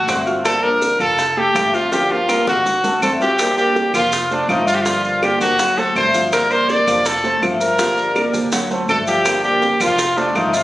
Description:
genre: latin, Cuban son and guajira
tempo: 164 BPM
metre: 4/4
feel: straight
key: G minor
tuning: A4 = 444 Hz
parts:
  - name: clear trumpet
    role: melody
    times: 0.0-10.6 s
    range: D4 to D5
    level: -16 LUFS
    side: equal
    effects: plate reverb
  - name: clear baby grand piano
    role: arpeggios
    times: 0.0-10.6 s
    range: F3 to F6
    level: -23 LUFS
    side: right 1 dB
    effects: none
  - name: upright bass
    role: bass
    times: 0.0-10.6 s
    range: F1 to D2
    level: -31 LUFS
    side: equal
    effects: none
  - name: fingerpicked swing-style acoustic guitar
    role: accompaniment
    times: 0.1-10.6 s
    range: D3 to G4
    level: -23 LUFS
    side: left 2 dB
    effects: none
  - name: bongos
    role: percussion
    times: 0.1-10.6 s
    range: none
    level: -27 LUFS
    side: left 1 dB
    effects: none
  - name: claves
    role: percussion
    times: 0.1-10.5 s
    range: none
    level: -24 LUFS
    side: right 1 dB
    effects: none
  - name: maracas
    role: percussion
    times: 0.1-10.6 s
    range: none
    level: -28 LUFS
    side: right 1 dB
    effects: none
room: moderate studio reverb, RT60 0.5 s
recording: recorded on a phone in the room, studio reverb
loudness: -14 LUFS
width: side -16 dB against mid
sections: 0.0-3.4 A section; 3.4-10.6 B section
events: drum fill 1.9-3.4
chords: 0.5 Gm7; 1.2 F; 1.9 Gm7; 2.7 D7; 3.4 Gm7; 4.1 F; 4.9 Gm7; 5.6 D7; 6.3 Gm7; 7.1 F; 7.8 Gm7; 8.5 D7; 9.3 Gm7; 10.0 F

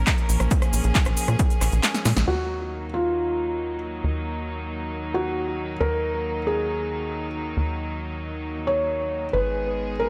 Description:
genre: uplifting trance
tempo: 136 BPM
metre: 4/4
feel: straight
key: Eb minor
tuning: A4 = 440 Hz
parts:
  - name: bright chamber string section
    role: sustained chords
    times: 0.0-10.1 s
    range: Eb3 to Bb4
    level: -33 LUFS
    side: equal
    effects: sidechain pumping, low-pass filter
  - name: tight sequencer bass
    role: bass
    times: 0.0-10.1 s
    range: Ab1 to Bb2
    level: -30 LUFS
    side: equal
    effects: sidechain pumping
  - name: big-room dance drum kit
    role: drums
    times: 0.1-2.4 s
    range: crash cymbal, handclaps, hi-hat, rim click, snare drum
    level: -28 LUFS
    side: equal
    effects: overdrive, low-pass filter on hats, low-pass filter on snare, low-pass filter on cymbals, low-pass filter on room
  - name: electronic kick drum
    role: drums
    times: 0.1-1.5 s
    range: none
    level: -24 LUFS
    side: equal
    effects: overdrive
  - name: cabasa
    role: percussion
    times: 0.1-2.3 s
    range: none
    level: -36 LUFS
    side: equal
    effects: none
  - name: felt-muted upright piano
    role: second line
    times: 2.3-10.1 s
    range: F4 to Db5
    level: -28 LUFS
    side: equal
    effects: digital delay
room: light reverb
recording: none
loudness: -25 LUFS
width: mono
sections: 0.0-2.3 A section; 2.3-10.1 B section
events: kick drops out 1.8-2.3; drum fill 1.8-2.3; band accent 2.2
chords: 0.0 Bbm; 2.3 Ebm; 9.3 Abm

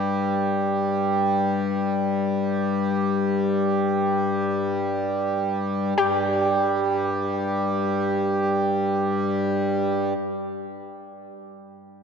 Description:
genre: world meditative, free-time meditation music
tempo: free time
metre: none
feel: none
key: unclear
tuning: A4 = 440 Hz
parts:
  - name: hand-pumped harmonium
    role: drone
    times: 0.0-10.1 s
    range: G2 to G3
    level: -22 LUFS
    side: equal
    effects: none
  - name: analog pluck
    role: texture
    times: 0.0-10.2 s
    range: G4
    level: -28 LUFS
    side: left 4 dB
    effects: chorus
room: wet cathedral reverb, RT60 5.4 s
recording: dark, warm production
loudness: -21 LUFS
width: side -6 dB against mid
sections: 0.0-6.0 A section; 6.0-10.0 B section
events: none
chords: none

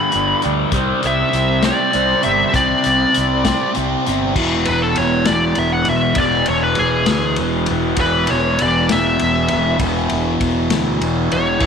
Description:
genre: psychedelic rock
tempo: 66 BPM (dotted quarters)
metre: 6/8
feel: straight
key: unclear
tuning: A4 = 440 Hz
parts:
  - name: fuzz lead guitar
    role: melody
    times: 0.0-11.7 s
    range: G#4 to B5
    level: -19 LUFS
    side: left 1 dB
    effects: wah, distortion, tape echo
  - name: fuzz guitar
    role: riff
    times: 0.0-11.7 s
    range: E2 to C4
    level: -18 LUFS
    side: equal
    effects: distortion, phaser
  - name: vintage drum kit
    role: drums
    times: 0.1-11.7 s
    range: crash cymbal, hi-hat, kick drum, ride cymbal, snare drum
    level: -23 LUFS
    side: left 4 dB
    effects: none
  - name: fuzz fingered electric bass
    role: bass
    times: 0.2-11.7 s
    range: E1 to D2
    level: -22 LUFS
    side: right 1 dB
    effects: overdrive
room: light reverb, small room ambience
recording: 1960s-style stereo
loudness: -14 LUFS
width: side -6 dB against mid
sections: 0.0-4.4 A section; 4.4-11.7 B section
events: lead electric guitar solo 4.4-11.7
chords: 0.0 G; 0.7 Csus2; 4.4 E5

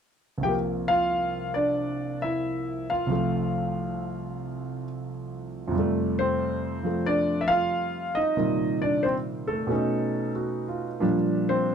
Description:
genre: solo jazz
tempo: 91 BPM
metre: 4/4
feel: swing 68% on 8ths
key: F major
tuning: A4 = 440 Hz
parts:
  - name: warm concert grand piano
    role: solo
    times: 0.4-11.7 s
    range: C2 to G5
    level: -24 LUFS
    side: equal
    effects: none
room: light reverb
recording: dark, warm production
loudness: -24 LUFS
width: side -7 dB against mid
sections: 0.4-5.7 A section; 5.7-11.7 B section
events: none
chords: 0.4 C7sus4; 3.1 F/C; 5.7 F69; 8.4 Cm7; 9.7 B9; 11.0 Bb6

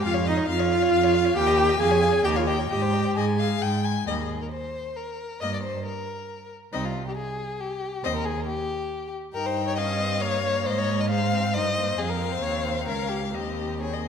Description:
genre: quick classical-period movement for string quartet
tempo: 136 BPM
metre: 3/4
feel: rubato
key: Eb major from 4.1 s, Ab major from 9.3 s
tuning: A4 = 440 Hz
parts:
  - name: rich violin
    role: melody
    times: 0.0-14.1 s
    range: C5 to Ab5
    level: -31 LUFS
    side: left 10 dB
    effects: none
  - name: warm violin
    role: second line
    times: 0.0-14.1 s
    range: Eb4 to Ab5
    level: -29 LUFS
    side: left 4 dB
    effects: none
  - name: rich viola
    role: accompaniment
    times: 0.0-14.1 s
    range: G3 to Ab4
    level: -26 LUFS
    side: right 2 dB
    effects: none
  - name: warm cello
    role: bass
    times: 0.0-14.1 s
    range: C2 to Ab2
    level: -28 LUFS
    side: right 2 dB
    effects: none
room: wet scoring stage reverb, RT60 1.5 s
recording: none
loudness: -23 LUFS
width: side -7 dB against mid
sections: 0.0-4.1 A section; 4.1-14.1 B section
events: none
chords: 0.1 Db/F; 1.4 Eb; 1.8 Db/F; 2.2 Eb7; 2.7 Ab5; 4.1 Eb; 5.4 Eb/G; 6.7 Cm; 8.0 Cm/Eb; 9.3 Eb7/G; 10.7 Ab; 12.0 F5; 12.9 Bbm/Db; 13.3 Ab/Eb

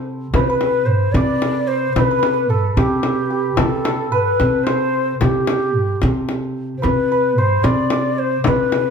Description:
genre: Persian modal ensemble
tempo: 74 BPM (dotted quarters)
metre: 6/8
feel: straight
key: unclear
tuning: A4 = 440 Hz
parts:
  - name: mellow hollow ney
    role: melody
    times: 0.0-8.9 s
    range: G4 to D5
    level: -20 LUFS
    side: left 3 dB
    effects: none
  - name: santur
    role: second line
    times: 0.0-8.9 s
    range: G4 to D5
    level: -23 LUFS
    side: right 5 dB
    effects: none
  - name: upright bass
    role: bass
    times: 0.0-8.9 s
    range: G2 to C3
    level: -20 LUFS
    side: equal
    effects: none
  - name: frame drum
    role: percussion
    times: 0.3-8.9 s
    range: none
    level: -22 LUFS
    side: left 3 dB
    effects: none
room: moderate large studio reverb, RT60 0.9 s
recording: band playing live in one room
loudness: -15 LUFS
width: side -6 dB against mid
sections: 0.3-8.9 A section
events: none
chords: none

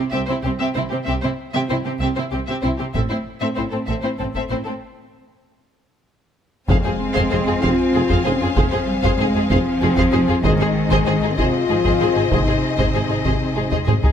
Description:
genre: cinematic, epic orchestral film score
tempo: 64 BPM (dotted quarters)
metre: 6/8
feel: straight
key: F minor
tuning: A4 = 442 Hz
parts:
  - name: warm symphonic violin section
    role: melody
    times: 0.0-14.1 s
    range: G4 to F5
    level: -29 LUFS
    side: left 3 dB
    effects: none
  - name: warm symphonic violin section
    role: second line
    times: 0.0-14.1 s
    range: C4 to C5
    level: -29 LUFS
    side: left 2 dB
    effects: none
  - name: rich symphonic viola section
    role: accompaniment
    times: 0.0-14.1 s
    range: C4 to Ab4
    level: -26 LUFS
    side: right 1 dB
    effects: none
  - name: warm symphonic cello section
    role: bass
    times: 0.0-13.7 s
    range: A2 to C4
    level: -25 LUFS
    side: right 2 dB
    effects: none
  - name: rich symphonic double bass section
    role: bass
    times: 0.1-14.1 s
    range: Ab1 to F2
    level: -25 LUFS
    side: right 2 dB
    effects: none
  - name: mellow French horn section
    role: sustained chords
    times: 0.8-13.9 s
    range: Ab3 to F4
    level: -23 LUFS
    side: left 4 dB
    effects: none
  - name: taiko ensemble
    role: drums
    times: 2.9-14.1 s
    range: none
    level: -23 LUFS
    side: equal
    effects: none
  - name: warm studio string section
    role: sustained chords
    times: 6.7-14.1 s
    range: C4 to Ab5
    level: -27 LUFS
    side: left 4 dB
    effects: none
  - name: mellow tuba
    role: bass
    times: 6.7-13.9 s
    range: F1 to Ab1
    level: -27 LUFS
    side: right 4 dB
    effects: none
  - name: impact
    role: sound effects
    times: 6.7-8.6 s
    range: none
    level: -31 LUFS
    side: equal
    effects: none
room: light reverb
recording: close, detailed microphones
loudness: -17 LUFS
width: side -8 dB against mid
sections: 0.0-6.7 A section; 6.7-14.1 B section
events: build-up 0.0-6.7; break 4.8-6.7; impact 6.7-8.6; drum fill 13.7-14.1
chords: 0.0 C; 2.9 Am; 6.7 Fm; 10.4 Ab

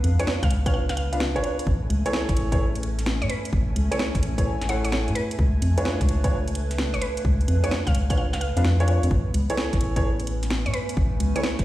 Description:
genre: UK garage, two-step garage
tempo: 129 BPM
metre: 4/4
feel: swing 67% on 16ths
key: A major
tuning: A4 = 440 Hz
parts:
  - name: warm analog pad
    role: sustained chords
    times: 0.0-11.6 s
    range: A3 to G#5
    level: -35 LUFS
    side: equal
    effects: chorus, sidechain pumping
  - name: organ-like FM bass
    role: bass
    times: 0.0-11.6 s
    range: G#1 to A2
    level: -23 LUFS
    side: equal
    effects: none
  - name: house drum kit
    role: drums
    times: 0.0-11.6 s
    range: hi-hat, snare drum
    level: -30 LUFS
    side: equal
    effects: none
  - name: warbly tape-like pad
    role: texture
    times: 0.0-11.6 s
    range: A3 to G#5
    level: -35 LUFS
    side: right 1 dB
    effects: chorus, built-in reverb, phaser, sidechain pumping
  - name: mallet-like synth pluck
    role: melody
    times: 0.2-11.5 s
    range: B4 to E#5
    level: -32 LUFS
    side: right 1 dB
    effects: chorus, digital delay
  - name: dark concert grand piano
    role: stabs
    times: 0.2-11.4 s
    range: D4 to F#5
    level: -28 LUFS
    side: equal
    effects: digital delay
  - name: electronic kick drum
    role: drums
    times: 0.4-11.6 s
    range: none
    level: -24 LUFS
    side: equal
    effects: none
room: little or no reverb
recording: played on a big sound system in a bare room, stone room reverb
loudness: -21 LUFS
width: side -15 dB against mid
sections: 0.0-11.6 A section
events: none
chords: 0.0 C#7b9; 1.7 Amaj7; 5.2 C#7b9; 9.1 Amaj7

